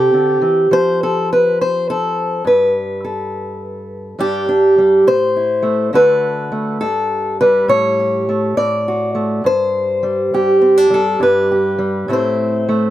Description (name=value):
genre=folk, solo fingerstyle acoustic guitar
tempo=68 BPM (dotted quarters)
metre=6/8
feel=straight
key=unclear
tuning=A4 = 435 Hz
part: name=fingerpicked acoustic archtop guitar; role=solo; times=0.0-12.9 s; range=G2 to D5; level=-13 LUFS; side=equal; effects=none
room=light reverb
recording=none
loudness=-13 LUFS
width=side -13 dB against mid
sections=0.0-4.2 A section; 4.2-12.9 B section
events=none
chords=0.0 Cadd9; 0.7 F; 2.4 Gadd9; 4.2 G5; 5.1 Am; 6.0 D; 6.8 N.C.; 7.7 A7; 8.6 D/A; 9.4 N.C.; 10.3 G5; 11.2 N.C.; 12.1 Am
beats=| 0.70 1.57 | 2.44 3.32 | 4.20 5.08 | 5.95 6.82 | 7.70 8.57 | 9.45 10.33 | 11.22 12.11